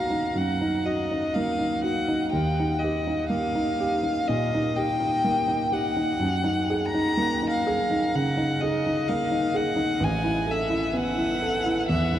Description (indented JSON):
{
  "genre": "classical, impressionist duo for violin and grand piano",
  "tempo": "62 BPM",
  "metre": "4/4",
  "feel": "rubato",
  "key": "unclear",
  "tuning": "A4 = 444 Hz",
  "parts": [
    { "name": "rich violin", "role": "melody", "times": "0.0-12.2 s", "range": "Eb5 to Bb5", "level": "-27 LUFS", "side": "left 1 dB", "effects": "none" },
    { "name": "warm grand piano", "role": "accompaniment", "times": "0.0-12.2 s", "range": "A1 to A4", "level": "-24 LUFS", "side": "right 1 dB", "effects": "none" }
  ],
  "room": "wet huge ambient reverb, RT60 7.6 s",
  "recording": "in a vast, echoing space, vinyl crackle",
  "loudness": "-22 LUFS",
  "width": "side -11 dB against mid",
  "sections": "0.0-12.2 A section",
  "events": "none",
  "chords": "0.0 Cbmaj7; 2.3 Ebadd9; 6.2 Gb69; 10.0 Asus2",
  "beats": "0.36 1.35 | 2.33 3.30 4.28 5.24 | 6.21 7.18 8.13 9.07 | 10.01 10.94 11.88"
}